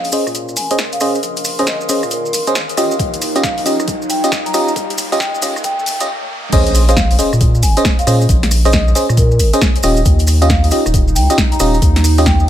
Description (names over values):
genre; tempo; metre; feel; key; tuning
UK garage, two-step garage; 136 BPM; 4/4; swing 64% on 16ths; Bb dorian; A4 = 440 Hz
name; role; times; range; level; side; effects
saturated sub bass; bass; 0.0-12.5 s; Eb1 to Bb2; -15 LUFS; equal; high-pass filter
house drum kit; drums; 0.0-12.4 s; crash cymbal, hi-hat, rim click, snare drum; -20 LUFS; left 1 dB; high-pass filter on snare, small room reverb, high-pass filter on hats, high-pass filter on cymbals
maracas; percussion; 0.0-12.5 s; none; -24 LUFS; right 2 dB; none
riser and sub drop; sound effects; 0.1-8.3 s; none; -28 LUFS; equal; none
warbly tape-like pad; texture; 0.0-6.1, 10.2-12.5 s; Db4 to C6; -25 LUFS; right 1 dB; chorus, built-in reverb, sidechain pumping
FM electric piano; stabs; 0.1-12.3 s; Db4 to Eb5; -18 LUFS; equal; chorus, low-pass filter, ping-pong delay
vibraphone with soft mallets; melody; 0.6-12.4 s; Bb4 to Bb5; -23 LUFS; equal; ping-pong delay
electronic kick drum; drums; 3.0-12.4 s; none; -16 LUFS; equal; overdrive, small room reverb
room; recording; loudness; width
light reverb; high-pass filter; -12 LUFS; side -11 dB against mid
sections
0.0-6.5 A section; 6.5-12.5 B section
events
build-up 0.0-6.5; filter sweep on FM electric piano 0.0-6.5; riser 0.1-6.5; break 6.1-6.5; drop 6.5-12.5; impact 6.5-8.3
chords
0.0 Bbm11; 2.8 Eb9; 6.3 N.C.; 6.5 Bbm11; 9.8 Eb9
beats
0.35 0.79 | 1.23 1.67 2.11 2.56 | 3.00 3.44 3.88 4.32 | 4.76 5.20 5.64 6.08 | 6.53 6.97 7.41 7.85 | 8.29 8.73 9.17 9.61 | 10.05 10.50 10.94 11.38 | 11.82 12.26